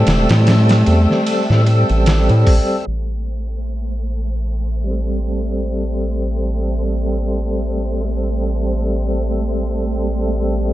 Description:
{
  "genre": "trip hop",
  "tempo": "75 BPM",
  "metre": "4/4",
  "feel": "swing 57% on 16ths",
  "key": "A minor",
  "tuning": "A4 = 441 Hz",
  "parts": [
    { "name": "dark cello", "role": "melody", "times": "0.0-2.0 s", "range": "A3", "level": "-21 LUFS", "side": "equal", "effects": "tape echo" },
    { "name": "tonewheel organ", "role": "accompaniment", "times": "0.0-10.7 s", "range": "G3 to A4", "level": "-21 LUFS", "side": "equal", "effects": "slow rotary speaker, tremolo, tape echo" },
    { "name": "clear symphonic string section", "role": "sustained chords", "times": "0.0-10.7 s", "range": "A4 to E6", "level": "-32 LUFS", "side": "left 2 dB", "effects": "none" },
    { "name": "round analog bass", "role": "bass", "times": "0.0-10.7 s", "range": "E1 to A2", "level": "-18 LUFS", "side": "equal", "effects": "none" },
    { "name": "trip hop sampler-style drum kit", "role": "drums", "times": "0.1-2.7 s", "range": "hi-hat, kick drum, ride cymbal, snare drum", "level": "-18 LUFS", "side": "equal", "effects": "studio reverb" },
    { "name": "flickering grainy texture", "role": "texture", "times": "3.1-10.7 s", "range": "A3 to C5", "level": "-28 LUFS", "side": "right 1 dB", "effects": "built-in reverb" }
  ],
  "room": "digital ambience",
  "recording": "dark, warm production, low-pass filter, nothing above 11.0 kHz",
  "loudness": "-15 LUFS",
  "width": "side -15 dB against mid",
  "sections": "0.0-2.9 A section; 2.9-10.7 B section",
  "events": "filter sweep 2.9-10.7",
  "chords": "0.0 Am7",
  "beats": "0.47 1.27 2.07 | 2.87 3.67 4.47 5.27 | 6.07 6.87 7.67 8.47 | 9.27 10.07"
}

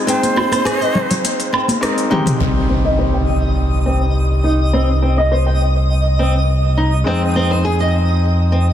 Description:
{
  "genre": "organic downtempo",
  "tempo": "103 BPM",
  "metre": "4/4",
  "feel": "straight",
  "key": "C minor",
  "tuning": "A4 = 440 Hz",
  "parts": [
    { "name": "breathy mellow Native American-style cedar flute", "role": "melody", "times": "0.0-1.8 s", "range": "C5", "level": "-22 LUFS", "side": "right 2 dB", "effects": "digital delay" },
    { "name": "felt-muted upright piano", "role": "accompaniment", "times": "0.0-8.7 s", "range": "G3 to G5", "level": "-23 LUFS", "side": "left 1 dB", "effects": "low-pass filter, digital delay" },
    { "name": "flamenco guitar", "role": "arpeggios", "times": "0.1-8.7 s", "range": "C4 to G5", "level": "-21 LUFS", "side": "equal", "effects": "low-pass filter, digital delay" },
    { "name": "organic electronic drum kit", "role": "drums", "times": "0.1-2.4 s", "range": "hi-hat, rim click, shaker, toms, woodblock", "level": "-19 LUFS", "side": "equal", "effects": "soft clipping on snare" },
    { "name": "congas and bongos", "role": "percussion", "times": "0.2-2.4 s", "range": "none", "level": "-22 LUFS", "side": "left 1 dB", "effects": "none" },
    { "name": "smooth synth bass", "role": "bass", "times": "2.4-8.7 s", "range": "C2 to F2", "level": "-15 LUFS", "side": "equal", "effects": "none" },
    { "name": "impact", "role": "sound effects", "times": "2.4-4.7 s", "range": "none", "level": "-23 LUFS", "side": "equal", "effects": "none" },
    { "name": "twinkling granular texture", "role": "texture", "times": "2.8-8.7 s", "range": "Eb5", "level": "-25 LUFS", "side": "right 1 dB", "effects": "built-in reverb" }
  ],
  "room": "light reverb, small room ambience",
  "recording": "dense, heavily limited modern master",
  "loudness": "-14 LUFS",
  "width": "side -10 dB against mid",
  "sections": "0.0-2.4 A section; 2.4-8.7 B section",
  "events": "break 0.1-2.4; drum fill 2.1; impact 2.4-4.7; filter sweep on nylon-string guitar 2.4-8.7",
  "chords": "0.0 Fm7; 2.4 Cm; 7.1 Fm7",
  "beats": "| 0.07 0.66 1.24 1.82 | 2.40 2.99 3.57 4.15 | 4.74 5.32 5.90 6.48 | 7.07 7.65 8.23"
}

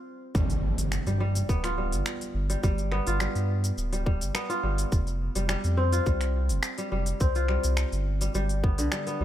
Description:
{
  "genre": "organic downtempo",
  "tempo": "105 BPM",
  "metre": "4/4",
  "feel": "straight",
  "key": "unclear",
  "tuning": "A4 = 439 Hz",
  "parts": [
    { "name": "kora", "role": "arpeggios", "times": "0.0-9.2 s", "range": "D3 to F4", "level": "-31 LUFS", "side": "equal", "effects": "ping-pong delay" },
    { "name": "warm sub bass", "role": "bass", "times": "0.3-9.2 s", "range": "D1 to G2", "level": "-27 LUFS", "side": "equal", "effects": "sidechain pumping" },
    { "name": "electronic kick drum", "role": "drums", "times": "0.3-8.8 s", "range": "none", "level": "-25 LUFS", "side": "equal", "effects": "none" },
    { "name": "impact", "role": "sound effects", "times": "0.3-2.6 s", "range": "none", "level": "-34 LUFS", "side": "equal", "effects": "none" },
    { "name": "organic electronic drum kit", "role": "drums", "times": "0.4-9.2 s", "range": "finger snaps, hi-hat, shaker", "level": "-33 LUFS", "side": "equal", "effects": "none" }
  ],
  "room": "little or no reverb",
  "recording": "none",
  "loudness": "-25 LUFS",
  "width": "side -12 dB against mid",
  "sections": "0.3-9.2 A section",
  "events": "stop 0.0-0.3; impact 0.3-2.6",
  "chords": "0.3 G; 4.9 F5; 7.2 C5",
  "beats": "| 0.34 0.92 1.49 2.06 | 2.63 3.20 3.77 4.34 | 4.92 5.49 6.06 6.63 | 7.20 7.77 8.35 8.92"
}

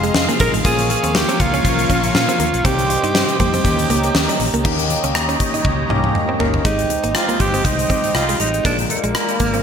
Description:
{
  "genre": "1980s-style pop",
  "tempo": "120 BPM",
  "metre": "4/4",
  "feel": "swing 55% on 16ths",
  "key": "Ab major",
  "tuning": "A4 = 440 Hz",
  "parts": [
    { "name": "bell-like tine electric piano", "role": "accompaniment", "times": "0.0-9.6 s", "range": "F3 to Bb4", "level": "-25 LUFS", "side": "left 5 dB", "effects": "phaser" },
    { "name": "fuzz guitar", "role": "accompaniment", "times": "0.0-5.2 s", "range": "F2 to Eb4", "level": "-29 LUFS", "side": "right 5 dB", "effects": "none" },
    { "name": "sweeping resonant pad", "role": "sustained chords", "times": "0.0-9.6 s", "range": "F4 to Db6", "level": "-24 LUFS", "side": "equal", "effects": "chorus" },
    { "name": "direct-recorded clean electric guitar", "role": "riff", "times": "0.0-9.6 s", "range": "G3 to Eb4", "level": "-26 LUFS", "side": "right 4 dB", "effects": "wide subtle chorus" },
    { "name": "fingered electric bass", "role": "bass", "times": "0.0-9.6 s", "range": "G1 to Bb2", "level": "-23 LUFS", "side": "equal", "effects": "tube saturation" },
    { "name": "gated 80s drum kit", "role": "drums", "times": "0.0-9.6 s", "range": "crash cymbal, hi-hat, kick drum, rim click, snare drum, toms", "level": "-19 LUFS", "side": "left 1 dB", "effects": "gated reverb" },
    { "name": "breathy alto saxophone", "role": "melody", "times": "0.4-9.6 s", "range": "Bb3 to Bb4", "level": "-20 LUFS", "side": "right 3 dB", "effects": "digital delay" }
  ],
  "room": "moderate plate reverb, RT60 1.2 s, small room ambience",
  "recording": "bright 1980s-style digital production",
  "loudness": "-15 LUFS",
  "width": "side -7 dB against mid",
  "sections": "0.0-4.6 A section; 4.6-6.6 B section; 6.6-9.6 C section",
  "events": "drum fill 5.6-6.6",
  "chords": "0.0 Fm7; 0.6 Bbm; 2.6 Cm; 3.6 Eb7; 6.6 Abmaj7; 8.6 Bb7",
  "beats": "0.15 | 0.65 1.15 1.65 2.15 | 2.65 3.15 3.65 4.15 | 4.65 5.15 5.65 6.15 | 6.65 7.15 7.65 8.15 | 8.65 9.15"
}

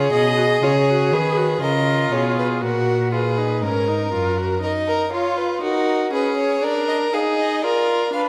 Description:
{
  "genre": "classical, baroque-style fugue for string quartet",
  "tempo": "60 BPM",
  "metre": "4/4",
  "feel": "straight",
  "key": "Eb minor from 4.6 s",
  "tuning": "A4 = 440 Hz",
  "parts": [
    { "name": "rich violin", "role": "melody", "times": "0.0-8.2 s", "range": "A#4 to F5", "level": "-26 LUFS", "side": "equal", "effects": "none" },
    { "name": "rich violin", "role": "second line", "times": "0.0-8.3 s", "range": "F4 to Cb5", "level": "-24 LUFS", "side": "equal", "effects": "none" },
    { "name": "rich viola", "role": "accompaniment", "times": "0.0-8.3 s", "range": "Db4 to G#4", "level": "-27 LUFS", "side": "equal", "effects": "none" },
    { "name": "rich cello", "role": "bass", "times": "0.0-4.6 s", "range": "F#2 to D#3", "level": "-25 LUFS", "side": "equal", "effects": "none" }
  ],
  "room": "wet scoring stage reverb, RT60 1.6 s",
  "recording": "none",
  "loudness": "-20 LUFS",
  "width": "mono",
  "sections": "0.0-4.6 A section; 4.6-8.3 B section",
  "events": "none",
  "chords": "0.0 C#; 0.6 C#7; 2.6 F#/A#; 4.6 Ebm; 6.6 Bb7/D",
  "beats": "| 0.62 1.62 2.62 3.62 | 4.62 5.63 6.63 7.64"
}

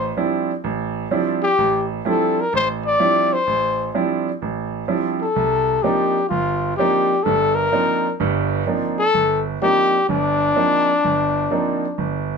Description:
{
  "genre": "jazz",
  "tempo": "127 BPM",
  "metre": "4/4",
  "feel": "swing 68% on 8ths",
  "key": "unclear",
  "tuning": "A4 = 440 Hz",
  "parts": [
    { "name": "breathy trumpet", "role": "melody", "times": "0.0-12.4 s", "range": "D4 to D5", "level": "-18 LUFS", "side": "left 3 dB", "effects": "none" },
    { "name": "clear grand piano", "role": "accompaniment", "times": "0.0-12.4 s", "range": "G1 to E4", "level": "-21 LUFS", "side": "right 5 dB", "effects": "none" }
  ],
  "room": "moderate club reverb, RT60 0.5 s",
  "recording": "none",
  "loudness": "-17 LUFS",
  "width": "side -5 dB against mid",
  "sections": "0.0-12.4 A section",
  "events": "none",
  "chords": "0.0 Dm11; 5.4 Cm11",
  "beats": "0.16 0.63 1.11 | 1.58 2.05 2.52 3.00 | 3.47 3.94 4.41 4.89 | 5.36 5.83 6.30 6.78 | 7.25 7.72 8.19 8.67 | 9.14 9.61 10.08 10.56 | 11.03 11.50 11.97"
}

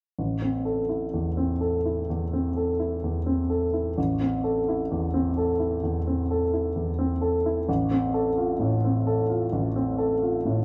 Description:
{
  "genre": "classical",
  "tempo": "65 BPM",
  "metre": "4/4",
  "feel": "rubato",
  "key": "A minor",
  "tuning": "A4 = 440 Hz",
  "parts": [
    { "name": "warm baby grand piano", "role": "accompaniment", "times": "0.2-10.6 s", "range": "A1 to A4", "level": "-26 LUFS", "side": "equal", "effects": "none" }
  ],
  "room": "wet large studio reverb, RT60 1.1 s",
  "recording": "band playing live in one room",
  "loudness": "-26 LUFS",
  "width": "mono",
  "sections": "0.2-10.6 A section",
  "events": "none",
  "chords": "0.2 Am; 7.7 F/A",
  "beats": "| 0.18 1.14 2.10 3.04 | 3.97 4.91 5.83 6.76 | 7.68 8.60 9.52 10.44"
}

